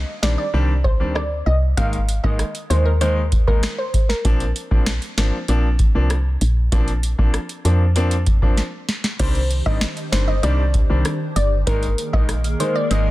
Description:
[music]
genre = dancehall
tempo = 97 BPM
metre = 4/4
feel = straight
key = C minor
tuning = A4 = 440 Hz
[part]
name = woody FM bass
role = bass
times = 0.0-13.1 s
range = G1 to F2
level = -19 LUFS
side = equal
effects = none
[part]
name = glassy wavetable pluck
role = melody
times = 0.2-4.2, 9.2-13.1 s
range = Bb4 to F5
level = -25 LUFS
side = equal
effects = chorus
[part]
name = bright concert grand piano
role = accompaniment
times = 0.2-13.1 s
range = Eb3 to Eb4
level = -26 LUFS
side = left 1 dB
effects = none
[part]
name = booming analog drum machine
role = drums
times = 0.2-13.1 s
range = crash cymbal, hi-hat, kick drum, rim click, snare drum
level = -20 LUFS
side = equal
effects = none
[part]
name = hollow soft pad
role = sustained chords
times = 9.5-13.1 s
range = Eb3 to C5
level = -29 LUFS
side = equal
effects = ensemble chorus, sidechain pumping
[sound]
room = digital ambience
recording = dense, heavily limited modern master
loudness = -17 LUFS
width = side -17 dB against mid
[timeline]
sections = 0.0-9.2 A section; 9.2-13.1 B section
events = drum fill 8.6-9.2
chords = 0.0 Cmadd9; 1.8 Absus2; 4.2 Bbadd9; 9.2 Cmadd9; 11.7 Absus2

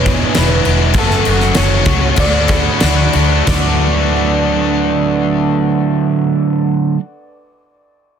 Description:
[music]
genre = rock, shoegaze and dream pop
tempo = 89-103 BPM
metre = 4/4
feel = straight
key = D lydian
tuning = A4 = 440 Hz
[part]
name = soft struck synth lead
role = melody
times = 0.0-6.8 s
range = A4 to D5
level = -22 LUFS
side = right 1 dB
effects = chorus, digital delay
[part]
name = dark analog pad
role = sustained chords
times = 0.0-6.8 s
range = D4 to C#6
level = -25 LUFS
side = left 1 dB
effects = lush chorus
[part]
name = picked twelve-string acoustic guitar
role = arpeggios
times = 0.0-4.3 s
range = D4 to A4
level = -26 LUFS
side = equal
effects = wide subtle chorus, digital delay
[part]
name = biting overdriven guitar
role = riff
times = 0.0-7.0 s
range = E2 to F#4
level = -18 LUFS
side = left 13 dB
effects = wide subtle chorus
[part]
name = crunchy overdriven guitar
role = riff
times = 0.0-7.0 s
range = E2 to F#4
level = -17 LUFS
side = right 9 dB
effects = reverse reverb
[part]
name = vintage muted fingered electric bass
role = bass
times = 0.0-6.8 s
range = E1 to D2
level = -17 LUFS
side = equal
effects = none
[part]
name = huge arena drum kit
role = drums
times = 0.1-3.6 s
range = crash cymbal, kick drum, snare drum, splash cymbal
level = -17 LUFS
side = left 1 dB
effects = none
[sound]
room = light reverb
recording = dense, heavily limited modern master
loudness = -11 LUFS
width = side -8 dB against mid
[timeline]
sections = 0.0-3.5 A section; 3.5-6.2 B section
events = slowing down 0.0-3.5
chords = 0.0 E7; 0.9 F#m7; 2.2 D6

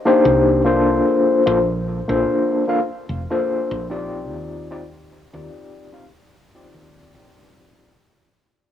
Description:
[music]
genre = vaporwave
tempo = 74 BPM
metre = 4/4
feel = swing 53% on 16ths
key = unclear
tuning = A4 = 439 Hz
[part]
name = overdriven tine electric piano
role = accompaniment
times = 0.1-7.9 s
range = Bb3 to F5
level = -17 LUFS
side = left 2 dB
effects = fast tremolo, wide subtle chorus, vintage 12-bit sampler grit, analog delay
[part]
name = woody fretless electric bass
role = bass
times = 0.3-7.9 s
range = F1 to G2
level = -25 LUFS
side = equal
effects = none
[sound]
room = light reverb, digital ambience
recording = home recording on cassette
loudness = -16 LUFS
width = side -10 dB against mid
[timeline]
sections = 0.0-8.0 A section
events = fade-out 0.0-8.0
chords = 0.0 Cm9; 1.1 Bbmaj9; 4.3 Ebmaj13

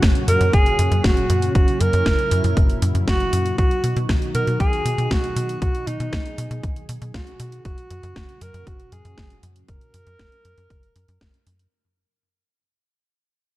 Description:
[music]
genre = italo disco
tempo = 118 BPM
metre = 4/4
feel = straight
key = unclear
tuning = A4 = 440 Hz
[part]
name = lush unison pad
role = sustained chords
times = 0.0-11.7 s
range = A#2 to G#4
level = -28 LUFS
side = equal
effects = chorus
[part]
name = tight sequencer bass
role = bass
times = 0.0-11.7 s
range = F#1 to B2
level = -23 LUFS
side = equal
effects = tube saturation
[part]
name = electronic kick drum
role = drums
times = 0.0-11.3 s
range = none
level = -20 LUFS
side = equal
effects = none
[part]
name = house drum kit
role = drums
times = 0.0-11.7 s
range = hi-hat, snare drum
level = -28 LUFS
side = equal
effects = none
[part]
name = breathy alto saxophone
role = melody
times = 0.3-11.4 s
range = D#4 to A#4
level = -24 LUFS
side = right 1 dB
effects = digital delay
[sound]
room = light reverb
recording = dark, warm production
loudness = -17 LUFS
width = side -16 dB against mid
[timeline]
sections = 0.0-11.7 A section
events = fade-out 0.0-11.7; filter sweep on analog synth pad 0.0-11.7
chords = 0.0 F#; 3.6 B; 7.7 F#

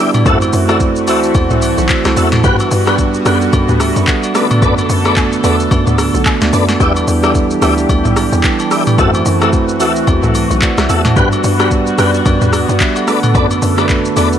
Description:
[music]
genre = amapiano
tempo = 110 BPM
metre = 4/4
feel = swing 58% on 16ths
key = unclear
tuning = A4 = 439 Hz
[part]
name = bell-like tine electric piano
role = accompaniment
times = 0.0-14.4 s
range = G3 to B5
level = -16 LUFS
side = right 4 dB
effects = dub echo
[part]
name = lush unison pad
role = sustained chords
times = 0.0-14.4 s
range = D3 to A4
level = -20 LUFS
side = left 1 dB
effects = chorus, phaser, sidechain pumping
[part]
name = tonewheel organ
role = stabs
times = 0.0-14.3 s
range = F#4 to F#5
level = -19 LUFS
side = left 2 dB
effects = chorus vibrato, fast rotary speaker, dub echo
[part]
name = smooth R&B drum kit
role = drums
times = 0.1-14.4 s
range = handclaps, hi-hat, kick drum, rim click, shaker, snare drum, toms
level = -16 LUFS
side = left 1 dB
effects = overdrive
[part]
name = agogo bells and woodblock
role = percussion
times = 0.1-14.3 s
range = none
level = -23 LUFS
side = left 3 dB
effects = dub echo
[part]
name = hollow log drum bass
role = bass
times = 0.3-14.4 s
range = B1 to G2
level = -16 LUFS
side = left 1 dB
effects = none
[sound]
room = light reverb, digital ambience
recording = echo-heavy mix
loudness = -10 LUFS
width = side -9 dB against mid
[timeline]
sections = 0.0-14.4 A section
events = tine electric piano fill 10.3-11.2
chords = 0.3 F#m7b5; 2.4 Gmaj7; 4.3 Bm7; 6.8 Em7; 9.0 F#m7b5; 11.2 Gmaj7; 13.1 Bm7

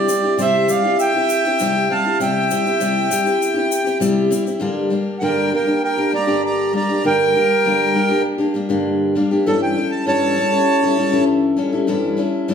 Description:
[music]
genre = acoustic folk duo or small band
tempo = 99 BPM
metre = 4/4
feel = straight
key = G dorian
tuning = A4 = 443 Hz
[part]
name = accordion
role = melody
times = 0.0-11.2 s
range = A4 to Bb5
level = -18 LUFS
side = right 2 dB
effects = none
[part]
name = mellow harmonica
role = second line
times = 0.0-4.0 s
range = G4 to F5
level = -23 LUFS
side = right 5 dB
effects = none
[part]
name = picked steel-string acoustic guitar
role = accompaniment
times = 0.0-12.5 s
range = G2 to A4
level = -18 LUFS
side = left 2 dB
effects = none
[part]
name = egg shaker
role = percussion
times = 0.1-4.5 s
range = none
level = -30 LUFS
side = left 6 dB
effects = none
[sound]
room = wet large studio reverb, RT60 0.9 s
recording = band playing live in one room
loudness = -15 LUFS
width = side -7 dB against mid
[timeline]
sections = 0.0-4.6 A section; 4.6-12.5 B section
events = accordion solo 4.6-12.5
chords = 0.0 C; 4.6 Gm; 9.5 A/G

